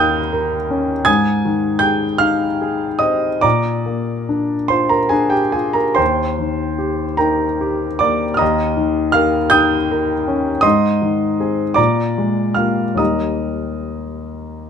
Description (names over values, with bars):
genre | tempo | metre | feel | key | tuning
classical, romantic nocturne for solo piano | 45-57 BPM (dotted quarters) | 12/8 | rubato | Eb major | A4 = 440 Hz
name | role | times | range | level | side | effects
warm concert grand piano | solo | 0.0-14.7 s | Eb2 to Ab6 | -15 LUFS | equal | none
room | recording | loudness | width
light reverb | none | -15 LUFS | side -7 dB against mid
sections
0.0-14.7 A section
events
none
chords
0.0 Eb7; 1.1 Ab; 3.4 Bb; 6.0 Eb; 8.4 Eb7; 10.6 Ab; 11.8 Bb7; 13.0 Eb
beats
| 1.07 2.21 3.44 4.72 | 6.00 7.21 8.41 9.53 | 10.64 11.78 12.99 14.31